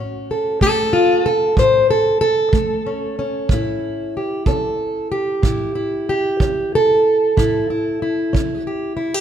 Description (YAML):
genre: acoustic country blues, solo or duo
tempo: 62 BPM (dotted quarters)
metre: 12/8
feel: straight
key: unclear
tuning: A4 = 440 Hz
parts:
  - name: fingerpicked plugged-in steel-string acoustic guitar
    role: melody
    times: 0.0-9.2 s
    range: A2 to C5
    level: -16 LUFS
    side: equal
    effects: none
  - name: kick drum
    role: drums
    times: 0.6-8.5 s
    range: none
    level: -20 LUFS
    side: right 2 dB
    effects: none
room: moderate recital hall reverb, RT60 1.5 s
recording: none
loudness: -16 LUFS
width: side -9 dB against mid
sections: 0.0-9.2 A section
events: none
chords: 0.0 A7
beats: 0.61 1.57 2.54 | 3.50 4.47 5.43 6.40 | 7.36 8.33